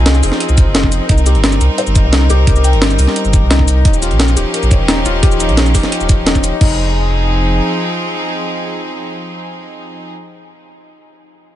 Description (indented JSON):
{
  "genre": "liquid drum and bass",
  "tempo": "174 BPM",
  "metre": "4/4",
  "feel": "straight",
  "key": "F minor",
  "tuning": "A4 = 440 Hz",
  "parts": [
    { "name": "bright chamber string section", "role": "sustained chords", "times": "0.0-10.1 s", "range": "F3 to Bb4", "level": "-20 LUFS", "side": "right 1 dB", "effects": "sidechain pumping" },
    { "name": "felt-muted upright piano", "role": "arpeggios", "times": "0.0-6.8 s", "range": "Eb4 to G5", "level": "-21 LUFS", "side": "left 6 dB", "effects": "ping-pong delay" },
    { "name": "warm sub bass", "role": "bass", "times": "0.0-7.6 s", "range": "Eb1 to C2", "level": "-13 LUFS", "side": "equal", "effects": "none" },
    { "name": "breakbeat sampler-style drum kit", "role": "drums", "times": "0.1-6.7 s", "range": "crash cymbal, hi-hat, shaker, snare drum", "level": "-17 LUFS", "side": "equal", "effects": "none" },
    { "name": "electronic kick drum", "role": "drums", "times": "0.6-6.7 s", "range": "none", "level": "-12 LUFS", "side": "equal", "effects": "none" }
  ],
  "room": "little or no reverb",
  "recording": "nothing above 10.8 kHz",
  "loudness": "-10 LUFS",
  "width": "side -12 dB against mid",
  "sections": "0.0-6.6 A section; 6.6-9.4 B section",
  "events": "drop 0.0-6.6",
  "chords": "0.0 Fm7; 1.1 Cm7; 3.9 Eb9; 6.6 Fm7"
}